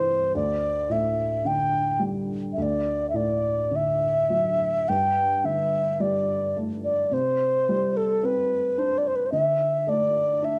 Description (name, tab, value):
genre	celtic folk, Celtic slow air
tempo	53 BPM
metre	4/4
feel	rubato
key	unclear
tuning	A4 = 440 Hz
part	baroque flute	melody	0.0-10.6 s	A4 to G5	-25 LUFS	equal	cassette tape
part	felt-muted upright piano	accompaniment	0.0-10.6 s	C2 to D4	-31 LUFS	equal	cassette tape
room	light reverb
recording	home recording on cassette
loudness	-24 LUFS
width	mono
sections	0.0-10.6 A section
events	none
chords	0.3 Dsus4; 2.6 D; 4.9 Gsus2; 7.1 Csus2; 9.3 Dsus2